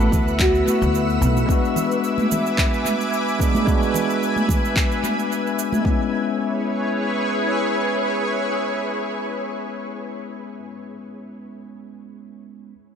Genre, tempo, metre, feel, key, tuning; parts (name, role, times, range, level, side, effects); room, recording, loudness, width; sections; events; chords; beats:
sunset chillout; 110 BPM; 4/4; swing 54% on 16ths; A4 = 440 Hz
nylon-string guitar; melody; 0.0-1.2 s; F#4 to A4; -24 LUFS; right 1 dB; analog delay
bell-like tine electric piano; accompaniment; 0.0-12.7 s; G#3 to A4; -25 LUFS; moving between left 9 dB and right 8 dB; auto-pan, low-pass filter, analog delay
shimmering ambient pad; sustained chords; 0.0-10.6 s; E4 to E6; -24 LUFS; left 1 dB; chorus, built-in reverb
upright bass; bass; 0.0-1.4 s; B1 to D2; -21 LUFS; equal
electronic cabasa and handclaps; drums; 0.0-5.8 s; -28 LUFS; right 2 dB; studio ambience, tape echo
electronic kick drum; drums; 0.1-6.0 s; -21 LUFS; equal; studio ambience
congas; percussion; 0.1-5.8 s; -26 LUFS; right 2 dB
moderate spring reverb, RT60 2.3 s; echo-heavy mix; -18 LUFS; side -7 dB against mid
0.0-5.9 A section; 5.9-10.2 B section
filter sweep on tine electric piano 0.0-5.9
0.0 D69; 1.5 E7; 5.9 E6/G#
0.40 0.94 | 1.49 2.04 2.58 3.13 | 3.67 4.22 4.76 5.31 | 5.86 6.40 6.95 7.49 | 8.04 8.58 9.13 9.67